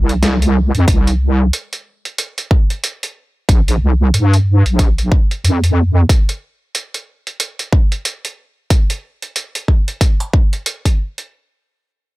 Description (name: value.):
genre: glitch hop.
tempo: 92 BPM.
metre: 4/4.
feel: swing 60% on 16ths.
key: unclear.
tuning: A4 = 440 Hz.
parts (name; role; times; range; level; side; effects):
wobble bass; bass; 0.0-6.1 s; Bb1 to G2; -12 LUFS; equal; chorus, overdrive.
boom bap sampler-style drum kit; drums; 0.1-11.3 s; hi-hat, snare drum; -21 LUFS; right 2 dB; none.
electronic kick drum; drums; 0.9-11.0 s; none; -12 LUFS; equal; none.
room: little or no reverb.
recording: none.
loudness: -13 LUFS.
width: side -19 dB against mid.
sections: 0.0-11.3 A section.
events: none.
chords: none.